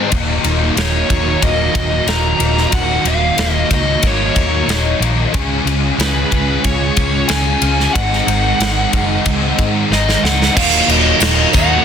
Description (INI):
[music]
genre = rock, shoegaze and dream pop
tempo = 92 BPM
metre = 4/4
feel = straight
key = Eb minor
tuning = A4 = 440 Hz
[part]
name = direct-recorded clean electric guitar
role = arpeggios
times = 0.0-11.8 s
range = Eb2 to Ab4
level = -27 LUFS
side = left 9 dB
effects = ensemble chorus, tape echo
[part]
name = biting overdriven guitar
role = riff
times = 0.0-11.8 s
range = Eb2 to Ab4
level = -22 LUFS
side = left 11 dB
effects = ensemble chorus
[part]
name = overdriven semi-hollow guitar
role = riff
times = 0.0-11.8 s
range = Eb2 to Ab4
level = -22 LUFS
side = right 13 dB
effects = reverse reverb
[part]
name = sludgy distorted guitar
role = riff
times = 0.0-11.8 s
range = Eb2 to Db4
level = -21 LUFS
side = right 1 dB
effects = overdrive
[part]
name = vintage muted fingered electric bass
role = bass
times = 0.1-11.8 s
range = Eb1 to Ab2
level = -19 LUFS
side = equal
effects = none
[part]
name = big rock drum kit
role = drums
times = 0.1-11.7 s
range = crash cymbal, kick drum, ride cymbal, snare drum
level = -18 LUFS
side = equal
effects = none
[part]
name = smooth overdriven lead guitar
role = melody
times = 0.8-11.8 s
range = Cb5 to Bb5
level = -19 LUFS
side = equal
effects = tape echo
[part]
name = tambourine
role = percussion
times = 10.7-11.7 s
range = none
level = -26 LUFS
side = right 9 dB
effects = none
[sound]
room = light reverb, studio reverb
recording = dense, heavily limited modern master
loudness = -12 LUFS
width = side -8 dB against mid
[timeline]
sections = 0.0-10.6 A section; 10.6-11.8 B section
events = drum fill 9.9-10.6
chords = 0.1 Ebm7; 5.3 Db7; 7.9 Ab7; 10.6 Ebm